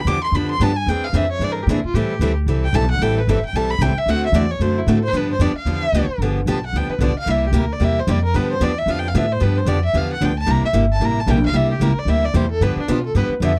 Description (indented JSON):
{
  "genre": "acoustic string swing (jazz manouche)",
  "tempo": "225 BPM",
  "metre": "4/4",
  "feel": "swing 57% on 8ths",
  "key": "G mixolydian",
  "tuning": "A4 = 440 Hz",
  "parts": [
    { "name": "warm violin", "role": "melody", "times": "0.0-13.6 s", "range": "D4 to D6", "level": "-25 LUFS", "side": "equal", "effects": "none" },
    { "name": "upright bass", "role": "bass", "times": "0.0-13.6 s", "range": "G1 to B2", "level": "-22 LUFS", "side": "equal", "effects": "none" },
    { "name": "picked steel-string acoustic guitar", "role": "accompaniment", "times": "0.1-13.5 s", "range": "C3 to A4", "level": "-24 LUFS", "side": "equal", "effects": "none" }
  ],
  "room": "little or no reverb",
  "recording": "dry, close 1970s-style studio recording",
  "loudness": "-19 LUFS",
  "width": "mono",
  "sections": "0.0-6.2 A section; 6.2-13.6 A section",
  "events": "violin solo 0.0-13.6",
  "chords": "0.0 G7; 0.9 E7alt; 1.9 Am7; 4.1 D7; 5.1 G7; 7.3 C7; 8.3 G7; 10.5 C7; 12.6 G7"
}